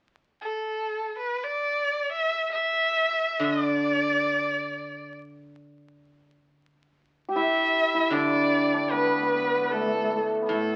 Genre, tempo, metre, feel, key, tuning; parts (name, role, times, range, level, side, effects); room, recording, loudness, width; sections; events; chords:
chinese traditional, Chinese chamber ensemble; free time; D zhi mode; A4 = 437 Hz
bright erhu; melody; 0.4-10.8 s; A4 to E5; -28 LUFS; equal
guzheng; accompaniment; 3.4-10.8 s; A2 to D3; -32 LUFS; equal
hammered dulcimer; second line; 7.3-10.8 s; A3 to G4; -28 LUFS; equal
wet studio reverb, RT60 0.7 s; very old 78 rpm record, vinyl crackle; -25 LUFS; mono
0.0-7.3 A section; 7.3-10.8 B section